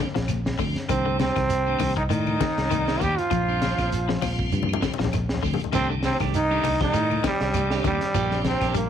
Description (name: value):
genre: afrobeat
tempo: 99 BPM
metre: 4/4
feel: swing 56% on 16ths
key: C dorian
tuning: A4 = 440 Hz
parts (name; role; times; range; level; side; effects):
- tonewheel organ; accompaniment; 0.0-8.7 s; Eb3 to D5; -33 LUFS; equal; slow rotary speaker, overdrive
- clean electric guitar; arpeggios; 0.0-8.9 s; D3 to G3; -32 LUFS; left 11 dB; none
- fingered electric bass; bass; 0.2-8.9 s; Bb1 to A2; -28 LUFS; equal; none
- crunchy breakbeat drum kit; drums; 0.2-8.9 s; hi-hat, kick drum, snare drum; -30 LUFS; equal; none
- congas; percussion; 0.2-8.6 s; none; -31 LUFS; left 8 dB; none
- shekere; percussion; 0.2-8.9 s; none; -33 LUFS; right 5 dB; none
- claves; percussion; 0.3-8.7 s; none; -38 LUFS; left 15 dB; none
- growling trombone; melody; 0.9-8.9 s; G3 to G4; -25 LUFS; right 2 dB; none
- breathy alto saxophone; second line; 0.9-8.9 s; G3 to G4; -35 LUFS; right 12 dB; none
- raspy baritone saxophone; second line; 0.9-8.9 s; G2 to G3; -34 LUFS; left 12 dB; none
- electric guitar at the edge of break-up; stabs; 5.7-8.8 s; Eb3 to G4; -32 LUFS; right 12 dB; phaser
room: light reverb, small room ambience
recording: 1960s-style stereo with parts hard left and right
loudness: -21 LUFS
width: side -9 dB against mid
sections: 0.0-8.9 A section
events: drum fill 4.5-5.7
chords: 0.0 Bb6; 0.9 Cm69; 3.3 Bb6; 5.7 Cm69; 8.2 Bb6